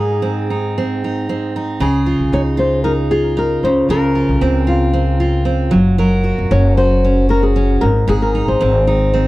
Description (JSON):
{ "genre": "pop", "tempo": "114 BPM", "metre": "4/4", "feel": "straight", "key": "unclear", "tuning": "A4 = 439 Hz", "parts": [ { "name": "flamenco guitar", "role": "melody", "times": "0.0-9.3 s", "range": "F4 to Db5", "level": "-19 LUFS", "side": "left 2 dB", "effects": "tape echo" }, { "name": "picked steel-string acoustic guitar", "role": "accompaniment", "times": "0.0-9.3 s", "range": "Ab2 to Bb4", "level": "-16 LUFS", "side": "right 1 dB", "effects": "none" }, { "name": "upright bass", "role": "bass", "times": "1.8-9.3 s", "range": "F1 to Db2", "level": "-17 LUFS", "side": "left 1 dB", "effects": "none" } ], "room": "small room ambience", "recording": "dry, close 1970s-style studio recording", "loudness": "-13 LUFS", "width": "side -18 dB against mid", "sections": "0.0-9.3 A section", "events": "none", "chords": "0.0 Ab; 1.8 Dbadd9; 3.6 Bbmadd9; 5.7 Gb; 7.8 Ab" }